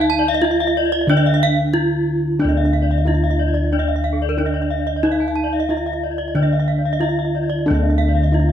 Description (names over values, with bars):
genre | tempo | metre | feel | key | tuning
Balinese gamelan | 91 BPM | 4/4 | straight | unclear | A4 = 443 Hz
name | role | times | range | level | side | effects
gamelan-type bronze metallophone | melody | 0.0-8.5 s | D4 to E4+50c | -23 LUFS | right 2 dB | none
gamelan-type bronze metallophone | arpeggios | 0.0-8.5 s | Bb4-40c to A5-45c | -24 LUFS | right 5 dB | none
gamelan-type bossed gongs | bass | 0.0-8.5 s | D2 to Eb4 | -18 LUFS | equal | none
gamelan-type bronze metallophone | arpeggios | 0.2-8.5 s | A4-45c to A5-45c | -24 LUFS | left 9 dB | none
gamelan-type bronze metallophone | accompaniment | 7.7-8.5 s | D3 | -25 LUFS | left 2 dB | none
room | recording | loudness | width
light reverb | close, detailed microphones | -16 LUFS | side -9 dB against mid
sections
0.0-8.5 A section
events
none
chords
none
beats
0.42 1.08 1.74 | 2.40 3.06 3.72 4.38 | 5.04 5.70 6.35 7.01 | 7.67 8.33